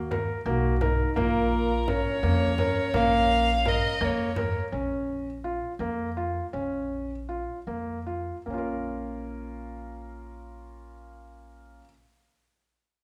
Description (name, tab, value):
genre	contemporary instrumental, chamber music in an uneven meter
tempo	148-169 BPM (eighths)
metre	5/8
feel	straight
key	Bb phrygian, Bb minor from 4.7 s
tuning	A4 = 440 Hz
part	mellow French horn	second line	0.0-4.4 s	Db4 to Gb4	-36 LUFS	equal	none
part	upright bass	bass	0.0-11.8 s	Bb1 to F2	-34 LUFS	equal	none
part	felt-muted upright piano	arpeggios	0.1-11.9 s	Bb3 to Bb4	-32 LUFS	equal	none
part	frame drum	percussion	0.1-4.7 s	none	-38 LUFS	equal	none
part	warm violin	melody	1.2-4.6 s	Bb4 to F5	-29 LUFS	equal	none
room	wet recital hall reverb, RT60 1.3 s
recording	recorded in a church or concert hall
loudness	-27 LUFS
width	mono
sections	0.0-4.7 A section; 4.7-8.5 B section; 8.5-12.5 C section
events	slowing down 4.7-8.5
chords	0.0 Ebm; 1.2 Bbm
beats	0.11 0.47 0.82 | 1.18 1.53 1.89 2.24 2.60 | 2.95 3.31 3.66 4.01 4.37 | 4.73 5.08 5.44 5.80 6.17 | 6.54 6.91 7.29 7.67 8.07 | 8.46 8.86 9.27 9.67 10.08 | 10.48 10.88 11.29 11.70